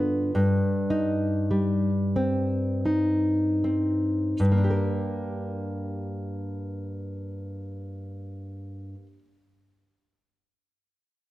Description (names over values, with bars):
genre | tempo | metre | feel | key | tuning
romantic piece for solo classical guitar | 24-39 BPM (dotted quarters) | 6/8 | rubato | G minor | A4 = 440 Hz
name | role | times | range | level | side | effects
nylon-string guitar | solo | 0.0-9.2 s | G2 to Bb4 | -24 LUFS | equal | none
room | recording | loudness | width
moderate scoring stage reverb, RT60 1.8 s | none | -24 LUFS | side -16 dB against mid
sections
0.0-4.4 A section; 4.4-8.6 B section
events
slowing down 0.0-4.4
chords
0.4 Cm/G; 4.4 Gm